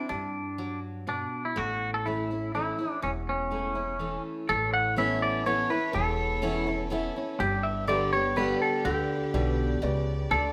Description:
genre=honky-tonk and classic country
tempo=124 BPM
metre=3/4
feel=straight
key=unclear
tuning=A4 = 436 Hz
part: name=clean electric guitar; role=melody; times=0.0-10.5 s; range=C#4 to F#5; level=-31 LUFS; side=equal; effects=none
part: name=picked steel-string acoustic guitar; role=accompaniment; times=0.0-10.5 s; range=E2 to G4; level=-34 LUFS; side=equal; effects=none
part: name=upright bass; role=bass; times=0.1-10.5 s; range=E1 to G2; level=-36 LUFS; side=equal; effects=none
part: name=warm studio violin section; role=sustained chords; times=4.5-10.5 s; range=A3 to D5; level=-41 LUFS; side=equal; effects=none
part: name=warm grand piano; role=accompaniment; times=5.0-10.3 s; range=E4 to E5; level=-39 LUFS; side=equal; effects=none
part: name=pedal steel guitar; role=sustained chords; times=10.3-10.5 s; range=A4 to D5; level=-36 LUFS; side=equal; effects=none
room=moderate large studio reverb, RT60 1.2 s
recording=none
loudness=-29 LUFS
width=mono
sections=0.0-4.5 A section; 4.5-10.5 B section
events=none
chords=0.0 N.C.; 1.6 A; 4.5 Aadd9; 7.4 G

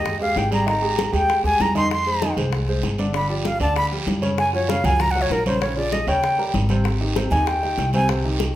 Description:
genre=Afro-Cuban jazz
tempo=194 BPM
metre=4/4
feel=straight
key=F minor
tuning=A4 = 440 Hz
part: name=breathy bright concert flute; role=melody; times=0.0-8.1 s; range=Bb4 to C6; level=-21 LUFS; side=equal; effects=none
part: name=dark baby grand piano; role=accompaniment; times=0.0-8.5 s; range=C3 to Eb5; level=-26 LUFS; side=equal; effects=none
part: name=upright bass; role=bass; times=0.0-8.5 s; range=G1 to Gb2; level=-24 LUFS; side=equal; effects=none
part: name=bongos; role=percussion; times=0.1-8.6 s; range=none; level=-30 LUFS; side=left 5 dB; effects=none
part: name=congas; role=percussion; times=0.1-8.6 s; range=none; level=-28 LUFS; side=equal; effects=none
part: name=guiro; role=percussion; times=0.1-8.5 s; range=none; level=-33 LUFS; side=right 5 dB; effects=none
room=wet large studio reverb, RT60 0.9 s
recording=band playing live in one room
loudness=-18 LUFS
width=side -13 dB against mid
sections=0.0-1.9 A section; 1.9-8.6 A section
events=flute solo 0.0-8.6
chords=0.0 Absus2; 1.9 Fm9; 3.1 G5; 4.4 Gbmaj7; 5.6 Bbm7; 6.2 Eb6; 6.8 Abmaj7

